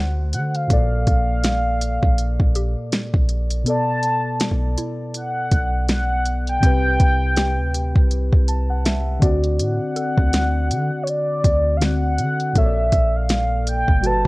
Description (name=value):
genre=contemporary R&B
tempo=81 BPM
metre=4/4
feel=swing 58% on 16ths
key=unclear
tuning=A4 = 441 Hz
part: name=mellow horn-like synth lead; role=melody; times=0.0-14.3 s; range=C#5 to A5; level=-23 LUFS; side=equal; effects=chorus
part: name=muted felt-like synth keys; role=accompaniment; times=0.0-14.3 s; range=Bb2 to A5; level=-25 LUFS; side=left 1 dB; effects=chorus
part: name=warm 808-style bass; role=bass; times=0.0-14.3 s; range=G1 to D3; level=-21 LUFS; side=equal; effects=none
part: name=smooth R&B drum kit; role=drums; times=0.3-14.3 s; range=hi-hat, kick drum, snare drum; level=-19 LUFS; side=equal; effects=none
part: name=mallet-like synth pluck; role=texture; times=2.6-10.7 s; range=E4 to A4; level=-35 LUFS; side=left 1 dB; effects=chorus, phaser, analog delay
room=little or no reverb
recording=worn, warbling old tape, cassette tape, warbly pitch drift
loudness=-17 LUFS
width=side -22 dB against mid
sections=0.0-14.3 A section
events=kick muted 3.7-4.4; synth keys fill 8.1-9.6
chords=0.0 D7; 0.7 Bbmaj7; 3.7 Bm7; 6.6 Cmaj9#11; 9.2 D7; 12.6 Bbmaj7